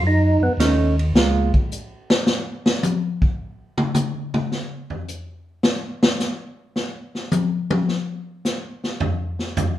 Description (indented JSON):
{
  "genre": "soul jazz organ trio",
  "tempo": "107 BPM",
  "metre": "4/4",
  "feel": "swing 69% on 8ths",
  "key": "unclear",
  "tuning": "A4 = 439 Hz",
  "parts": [
    { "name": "percussive tonewheel organ", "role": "melody", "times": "0.0-0.5 s", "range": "B3 to D#4", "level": "-20 LUFS", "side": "right 2 dB", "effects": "chorus vibrato, slow rotary speaker" },
    { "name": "mellow tonewheel organ", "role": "bass", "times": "0.0-1.5 s", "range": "C#2 to F#2", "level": "-20 LUFS", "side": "equal", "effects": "slow rotary speaker" },
    { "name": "hollow-body jazz guitar", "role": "accompaniment", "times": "0.6-1.5 s", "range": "G#3 to E#4", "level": "-20 LUFS", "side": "right 3 dB", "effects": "none" },
    { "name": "vintage drum kit", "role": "drums", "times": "0.6-9.8 s", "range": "hi-hat, kick drum, ride cymbal, snare drum, toms", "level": "-20 LUFS", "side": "left 1 dB", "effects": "none" }
  ],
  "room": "wet studio reverb, RT60 0.8 s",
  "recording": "band playing live in one room",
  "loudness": "-19 LUFS",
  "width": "side -13 dB against mid",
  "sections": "0.0-9.8 A section",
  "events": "tonewheel organ solo 0.0-9.8; drum solo 1.2-9.8",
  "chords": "0.0 B9 (rootless); 1.2 C#6; 3.4 N.C."
}